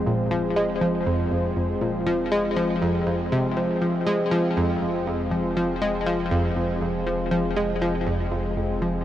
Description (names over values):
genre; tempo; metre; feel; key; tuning
ambient; 120 BPM; 4/4; straight; F minor; A4 = 436 Hz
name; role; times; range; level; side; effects
sweeping resonant pad; sustained chords; 0.0-9.0 s; F3 to C5; -26 LUFS; equal; chorus
round analog bass; bass; 0.0-9.0 s; F1; -36 LUFS; equal; tube saturation
analog pluck; riff; 0.1-9.0 s; F2 to Ab3; -24 LUFS; equal; chorus, ping-pong delay
room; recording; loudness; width
wet huge ambient reverb, RT60 7.4 s; worn, warbling old tape, cassette tape, warbly pitch drift; -22 LUFS; side -12 dB against mid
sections
0.0-9.0 A section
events
fade-in on analog synth bass 0.0-9.0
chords
0.0 Fm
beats
| 0.07 0.57 1.07 1.57 | 2.07 2.57 3.07 3.57 | 4.07 4.57 5.07 5.57 | 6.07 6.57 7.07 7.57 | 8.07 8.57